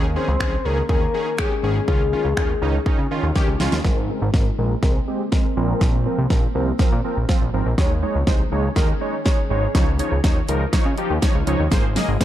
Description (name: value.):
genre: dance-pop.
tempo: 122 BPM.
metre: 4/4.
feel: straight.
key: Ab major.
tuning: A4 = 440 Hz.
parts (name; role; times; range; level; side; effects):
big bright polysynth; accompaniment; 0.0-12.2 s; Eb3 to Eb5; -25 LUFS; right 1 dB; sidechain pumping, low-pass filter.
glassy FM pad; sustained chords; 0.0-12.2 s; Db3 to Ab4; -31 LUFS; left 1 dB; ensemble chorus, built-in reverb, sidechain pumping, low-pass filter.
fat analog bass; bass; 0.0-12.2 s; Ab1 to Db3; -22 LUFS; equal; sidechain pumping.
soft octave-layered synth lead; melody; 0.2-3.3 s; Ab4 to C5; -25 LUFS; left 5 dB; chorus, tremolo, ping-pong delay.
pop drum kit; drums; 0.4-12.2 s; finger snaps, hi-hat, kick drum, snare drum; -20 LUFS; equal; none.
riser; sound effects; 12.2 s; none; barely audible; none; none.
room: light reverb.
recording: dark, warm production.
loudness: -18 LUFS.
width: side -12 dB against mid.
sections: 0.0-3.8 A section; 3.8-12.2 B section.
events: drum fill 3.4-3.8, 3.8-12.2; build-up 3.8-12.2; filter sweep 3.8-12.2.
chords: 0.0 Eb7sus4; 1.9 Dbadd9; 3.8 Abadd9; 5.6 Bbsus2; 7.8 Eb7sus4; 9.7 Dbadd9; 11.7 Abadd9.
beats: 0.41 0.90 1.39 | 1.88 2.37 2.86 3.36 | 3.85 4.34 4.83 5.32 | 5.82 6.31 6.80 7.29 | 7.78 8.27 8.77 9.26 | 9.75 10.24 10.73 11.22 | 11.72 12.21.